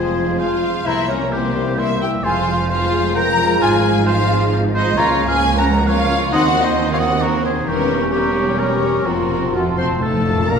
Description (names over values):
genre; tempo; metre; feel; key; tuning
classical, dramatic, fast romantic movement for symphony orchestra; 132 BPM; 3/4; rubato; F minor; A4 = 440 Hz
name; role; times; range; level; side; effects
warm symphonic violin section; melody; 0.0-10.6 s; A3 to C6; -26 LUFS; left 5 dB; none
warm oboe; second line; 0.0-10.6 s; F4 to G5; -24 LUFS; right 2 dB; none
warm symphonic violin section; second line; 0.0-10.0 s; A4 to Bb5; -22 LUFS; left 1 dB; none
rich symphonic viola section; accompaniment; 0.0-10.6 s; Eb3 to C#4; -25 LUFS; right 2 dB; none
warm French horn section; sustained chords; 0.0-10.6 s; Ab3 to G4; -24 LUFS; left 1 dB; none
concert harp; arpeggios; 0.0-10.6 s; F2 to F5; -26 LUFS; left 6 dB; none
warm chamber double bass section; bass; 0.0-10.6 s; E1 to Eb2; -24 LUFS; right 4 dB; none
warm studio cello section; bass; 0.0-10.6 s; C2 to Bb2; -24 LUFS; right 2 dB; none
clear clarinet; second line; 0.9-10.6 s; Eb4 to C5; -27 LUFS; left 2 dB; none
mellow concert flute; second line; 0.9-10.6 s; F5 to C#6; -26 LUFS; right 1 dB; none
timpani; percussion; 9.1-10.4 s; F2; -25 LUFS; left 2 dB; none
clear trombone section; sustained chords; 10.5-10.6 s; Bb2; -22 LUFS; equal; none
room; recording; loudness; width
wet concert hall reverb, RT60 2.0 s; minimal, uncompressed stereo recording; -15 LUFS; side -6 dB against mid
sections
0.0-10.5 A section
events
timpani fill 9.1-10.5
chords
0.0 Fm; 0.9 C7; 2.2 Fm; 3.6 Fm/Ab; 5.0 Bbm/Db; 6.3 Ebm6; 7.7 Edim7; 9.1 F